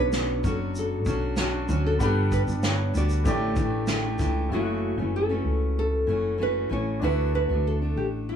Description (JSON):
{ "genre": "acoustic pop", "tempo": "96 BPM", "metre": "4/4", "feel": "straight", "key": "unclear", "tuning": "A4 = 440 Hz", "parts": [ { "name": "nylon-string guitar", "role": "melody", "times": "0.0-8.4 s", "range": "F#4 to D5", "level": "-28 LUFS", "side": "equal", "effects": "none" }, { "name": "bright grand piano", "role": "accompaniment", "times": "0.0-8.4 s", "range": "G3 to F#5", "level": "-36 LUFS", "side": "left 4 dB", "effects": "none" }, { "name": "fingerpicked steel-string acoustic guitar", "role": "accompaniment", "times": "0.0-8.4 s", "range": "F#2 to G4", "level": "-29 LUFS", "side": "right 1 dB", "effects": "none" }, { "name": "woody fretless electric bass", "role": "bass", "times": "0.0-8.4 s", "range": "F#1 to D2", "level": "-27 LUFS", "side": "equal", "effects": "none" }, { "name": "unplugged drum kit", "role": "drums", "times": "0.1-4.3 s", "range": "kick drum, shaker, snare drum", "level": "-29 LUFS", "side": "equal", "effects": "none" } ], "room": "light reverb", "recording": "none", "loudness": "-23 LUFS", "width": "side -8 dB against mid", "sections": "0.0-4.5 A section; 4.5-8.4 B section", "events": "none", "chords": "0.0 Bmadd9; 2.0 Gmaj7; 3.3 A7sus4; 4.5 F#m7; 7.0 Dadd9", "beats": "0.13 0.75 1.38 | 2.00 2.63 3.25 3.88 | 4.51 5.13 5.76 6.39 | 7.01 7.64 8.27" }